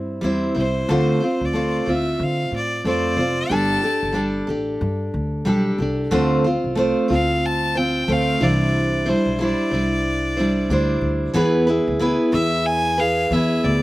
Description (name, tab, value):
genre	acoustic pop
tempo	92 BPM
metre	4/4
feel	swing 60% on 16ths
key	unclear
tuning	A4 = 440 Hz
part	picked steel-string acoustic guitar	accompaniment	0.0-13.8 s	C3 to C5	-20 LUFS	equal	none
part	upright bass	bass	0.0-13.8 s	F1 to D3	-25 LUFS	equal	none
part	clear fiddle	melody	0.6-13.8 s	C5 to A5	-24 LUFS	equal	slapback echo
room	little or no reverb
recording	recorded outdoors, with no room sound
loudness	-18 LUFS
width	side -17 dB against mid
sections	0.0-6.1 A section; 6.1-13.8 B section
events	none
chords	0.0 C; 0.9 Dm7; 3.5 Gsus2; 6.1 Dm7; 8.4 Cadd9; 11.4 E